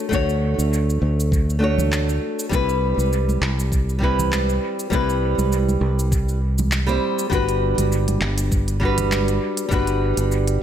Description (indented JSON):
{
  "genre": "sunset chillout",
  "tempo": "100 BPM",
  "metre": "4/4",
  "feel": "swing 55% on 16ths",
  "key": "unclear",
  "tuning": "A4 = 441 Hz",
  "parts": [
    { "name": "nylon-string guitar", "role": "accompaniment", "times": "0.0-10.6 s", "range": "G3 to C#5", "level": "-22 LUFS", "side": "moving between left 4 dB and right 4 dB", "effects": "auto-pan, tape echo" },
    { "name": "fingered electric bass", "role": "bass", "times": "0.1-10.6 s", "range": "G1 to D2", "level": "-21 LUFS", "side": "equal", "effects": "none" },
    { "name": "electronic kick drum", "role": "drums", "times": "0.1-9.8 s", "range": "none", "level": "-22 LUFS", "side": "equal", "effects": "studio reverb" },
    { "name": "smooth R&B drum kit", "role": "drums", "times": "0.1-10.6 s", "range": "handclaps, hi-hat, shaker", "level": "-30 LUFS", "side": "equal", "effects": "studio reverb, dub echo" },
    { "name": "congas", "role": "percussion", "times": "1.8-9.2 s", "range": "none", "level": "-29 LUFS", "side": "right 3 dB", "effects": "none" }
  ],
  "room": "light reverb",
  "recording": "echo-heavy mix",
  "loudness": "-18 LUFS",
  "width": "side -10 dB against mid",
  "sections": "0.0-10.6 A section",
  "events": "none",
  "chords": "0.0 Dmaj7; 2.5 Cmaj7; 7.3 Gmaj7",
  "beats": "| 0.12 0.72 1.32 1.92 | 2.52 3.12 3.72 4.32 | 4.92 5.52 6.12 6.72 | 7.32 7.92 8.52 9.12 | 9.72 10.32"
}